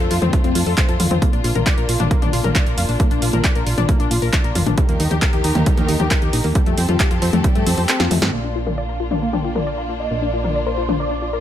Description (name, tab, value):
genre	uplifting trance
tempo	135 BPM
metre	4/4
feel	straight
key	Bb major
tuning	A4 = 438 Hz
part	rich symphonic string section	sustained chords	0.0-11.4 s	Eb3 to Bb4	-27 LUFS	left 1 dB	sidechain pumping
part	analog pluck	arpeggios	0.0-11.4 s	G3 to D5	-23 LUFS	left 4 dB	chorus, sidechain pumping, tape echo
part	solid FM bass	bass	0.0-11.4 s	F1 to G2	-21 LUFS	equal	sidechain pumping
part	punchy analog drum machine	drums	0.0-11.0 s	handclaps, hi-hat, snare drum, toms	-22 LUFS	left 1 dB	sidechain pumping on hats, low-pass filter on hats, sidechain pumping on toms, low-pass filter on toms, low-pass filter on snare, low-pass filter on room
part	electronic kick drum	drums	0.3-7.5 s	none	-18 LUFS	equal	none
part	big supersaw lead	melody	8.3-11.4 s	C5 to G5	-25 LUFS	equal	phaser, sidechain pumping, low-pass filter, tape echo
room	light reverb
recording	none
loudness	-16 LUFS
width	side -11 dB against mid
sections	0.0-8.3 A section; 8.3-11.4 B section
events	kick drops out 7.9-8.3; drum fill 8.0-8.3; filter sweep on supersaw synth 8.3-11.4; filter sweep on synth pluck 8.3-11.4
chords	0.0 F; 1.2 Bb; 4.8 Eb; 6.6 Fadd9; 8.3 Bb